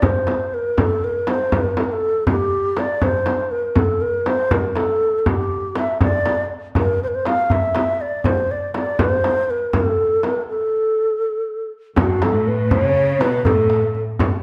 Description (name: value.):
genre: Persian modal ensemble.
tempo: 80 BPM (dotted quarters).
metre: 6/8.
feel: straight.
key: A dastgah shur.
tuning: A4 = 440 Hz.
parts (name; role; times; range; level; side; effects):
breathy mellow low ney; melody; 0.0-14.0 s; F#4 to F5; -22 LUFS; equal; slapback echo.
frame drum; percussion; 0.0-14.3 s; none; -26 LUFS; equal; none.
tombak; percussion; 0.0-14.3 s; none; -24 LUFS; equal; none.
warm studio cello section; second line; 12.0-14.0 s; F#2 to C#3; -24 LUFS; equal; none.
room: moderate recital hall reverb, RT60 1.5 s.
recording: none.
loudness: -19 LUFS.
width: mono.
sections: 0.0-12.0 A section; 12.0-14.4 B section.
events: break 10.5-12.0.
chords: none.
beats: | 0.03 0.77 | 1.52 2.27 | 3.02 3.77 | 4.51 5.26 | 6.01 6.75 | 7.50 8.25 | 8.99 9.74 | 10.48 11.22 | 11.97 12.71 | 13.45 14.20.